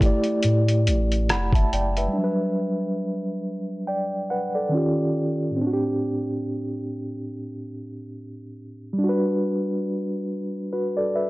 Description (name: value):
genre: lo-fi hip hop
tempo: 70 BPM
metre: 4/4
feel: swing 57% on 16ths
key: G major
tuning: A4 = 438 Hz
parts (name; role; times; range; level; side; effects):
- mellow reed electric piano; accompaniment; 0.0-11.3 s; A2 to B5; -24 LUFS; equal; fast tremolo, low-pass filter
- lo-fi sampler-style drum kit; drums; 0.0-2.1 s; hi-hat, kick drum, rim click; -22 LUFS; equal; none
- soft dub sub bass; bass; 0.4-2.1 s; F1 to A2; -22 LUFS; equal; tube saturation
room: little or no reverb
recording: dry, gritty hardware recording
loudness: -22 LUFS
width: side -20 dB against mid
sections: 0.0-2.1 A section; 2.1-11.3 B section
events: none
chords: 0.0 A7sus4; 2.1 Gmaj7; 4.7 Eb9; 5.6 D7sus4/A; 9.0 Gmaj7